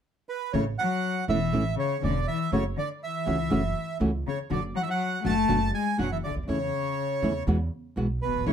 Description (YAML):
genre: tango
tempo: 121 BPM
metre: 4/4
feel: rubato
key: A major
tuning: A4 = 438 Hz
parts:
  - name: bandoneon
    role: melody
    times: 0.3-8.5 s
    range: B4 to A5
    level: -30 LUFS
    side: right 5 dB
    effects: slapback echo
  - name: warm cello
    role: second line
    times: 0.5-8.5 s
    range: B2 to A3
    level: -30 LUFS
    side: left 8 dB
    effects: none
  - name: nylon-string guitar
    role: accompaniment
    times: 0.5-8.5 s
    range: B2 to F#4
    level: -28 LUFS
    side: right 1 dB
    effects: none
  - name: upright bass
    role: bass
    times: 0.5-8.5 s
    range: E1 to E2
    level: -30 LUFS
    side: right 1 dB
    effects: none
  - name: dark studio string section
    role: stabs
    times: 8.5 s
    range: A3 to E4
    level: -27 LUFS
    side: left 2 dB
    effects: none
room: light reverb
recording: close, detailed microphones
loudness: -25 LUFS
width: side -8 dB against mid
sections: 0.5-8.5 A section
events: none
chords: 0.0 N.C.; 0.5 A; 2.5 F#m7; 4.5 Bm/F#; 6.5 A/E; 7.5 Eadd9